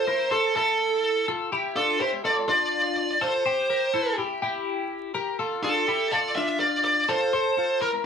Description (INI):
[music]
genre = indie pop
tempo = 124 BPM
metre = 4/4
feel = straight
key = D minor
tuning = A4 = 444 Hz
[part]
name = high-gain lead guitar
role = melody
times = 0.0-7.9 s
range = A4 to E5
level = -23 LUFS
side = right 2 dB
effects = distortion
[part]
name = twelve-string electric guitar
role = arpeggios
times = 0.0-8.1 s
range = D4 to C5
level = -27 LUFS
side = left 2 dB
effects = phaser
[sound]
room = wet studio ambience, RT60 0.5 s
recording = band playing live in one room, vinyl crackle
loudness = -22 LUFS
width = side -7 dB against mid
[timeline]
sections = 0.0-8.1 A section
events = none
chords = 0.0 Am; 1.3 Dmadd9; 3.5 C; 5.4 Dm; 7.3 Am